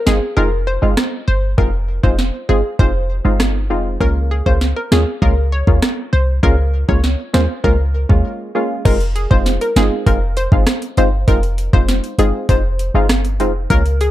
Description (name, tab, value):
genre	dancehall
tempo	99 BPM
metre	4/4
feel	straight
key	F minor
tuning	A4 = 440 Hz
part	analog pluck	melody	0.0-14.1 s	Ab4 to Db5	-22 LUFS	left 1 dB	chorus, digital delay
part	punchy chord stab	accompaniment	0.1-13.8 s	Ab3 to F4	-21 LUFS	equal	chorus
part	clean 808-style bass	bass	0.1-14.1 s	F1 to Eb2	-16 LUFS	equal	none
part	island pop drum kit	drums	0.1-14.1 s	crash cymbal, hi-hat, kick drum, rim click, snare drum	-16 LUFS	equal	overdrive
room	little or no reverb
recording	dark, warm production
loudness	-13 LUFS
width	side -14 dB against mid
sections	0.0-8.9 A section; 8.9-14.1 B section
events	break 8.2-8.9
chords	0.0 Fm7; 4.0 Db6; 8.9 Fm7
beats	0.37 0.98 | 1.58 2.19 2.79 3.40 | 4.01 4.61 5.22 5.82 | 6.43 7.04 7.64 8.25 | 8.85 9.46 10.07 10.67 | 11.28 11.88 12.49 13.10 | 13.70